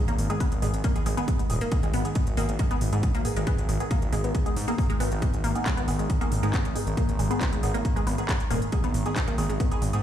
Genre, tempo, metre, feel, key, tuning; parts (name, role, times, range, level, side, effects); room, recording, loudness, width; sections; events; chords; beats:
driving peak-time techno; 137 BPM; 4/4; straight; G# minor; A4 = 440 Hz
filtered dub chord stab; stabs; 0.0-10.0 s; D#3 to G#4; -34 LUFS; right 3 dB; phaser, lush chorus, sidechain pumping, ping-pong delay
overtone-sweeping drone; drone; 0.0-10.0 s; G#2 to D#3; -36 LUFS; equal; chorus, built-in reverb, sidechain pumping
resonant blip pluck; riff; 0.1-9.9 s; G#3 to B3; -31 LUFS; left 1 dB; phaser, tube saturation, sidechain pumping, digital delay
gritty driven synth bass; bass; 0.1-10.0 s; D#1 to G#2; -28 LUFS; equal; distortion, sidechain pumping
techno drum kit; drums; 0.1-10.0 s; handclaps, hi-hat, toms; -32 LUFS; equal; overdrive, sidechain pumping on hats, small room ambience, sidechain pumping on toms
electronic kick drum; drums; 0.4-9.7 s; -27 LUFS; equal; overdrive, small room ambience
little or no reverb; played on a big sound system in a bare room, stone room reverb; -23 LUFS; side -10 dB against mid
0.0-10.0 A section
0.0 G#m
0.40 0.84 1.28 | 1.72 2.15 2.59 3.03 | 3.47 3.91 4.34 4.78 | 5.22 5.66 6.10 6.54 | 6.97 7.41 7.85 8.29 | 8.72 9.16 9.60